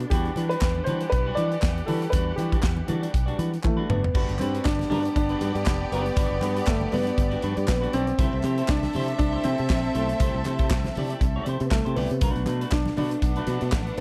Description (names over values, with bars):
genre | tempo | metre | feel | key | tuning
disco | 119 BPM | 4/4 | swing 56% on 16ths | G major | A4 = 444 Hz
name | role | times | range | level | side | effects
clean electric guitar | accompaniment | 0.0-14.0 s | G3 to D5 | -37 LUFS | equal | none
clear studio string section | sustained chords | 0.0-4.1, 12.2-14.0 s | E3 to F#5 | -41 LUFS | equal | none
fingered electric bass | bass | 0.0-14.0 s | F1 to E3 | -30 LUFS | equal | none
modern studio drum kit | drums | 0.0-14.0 s | crash cymbal, handclaps, hi-hat, kick drum, snare drum, toms | -28 LUFS | equal | none
warm baby grand piano | melody | 0.1-14.0 s | A3 to D5 | -31 LUFS | equal | tape echo
congas | percussion | 0.1-14.0 s | none | -37 LUFS | equal | none
group handclap | percussion | 0.6-13.9 s | none | -43 LUFS | equal | none
clear studio violin section | second line | 4.2-14.0 s | B3 to F#5 | -34 LUFS | equal | none
room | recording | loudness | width
little or no reverb | none | -25 LUFS | mono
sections
0.0-4.2 A section; 4.2-14.0 B section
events
drum fill 3.6-4.2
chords
0.1 Em9; 4.2 Gmaj7; 8.2 C6; 12.2 Bm7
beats
| 0.11 0.61 1.12 1.62 | 2.13 2.64 3.14 3.65 | 4.15 4.66 5.16 5.66 | 6.17 6.67 7.17 7.68 | 8.18 8.69 9.19 9.69 | 10.20 10.70 11.21 11.71 | 12.21 12.72 13.22 13.72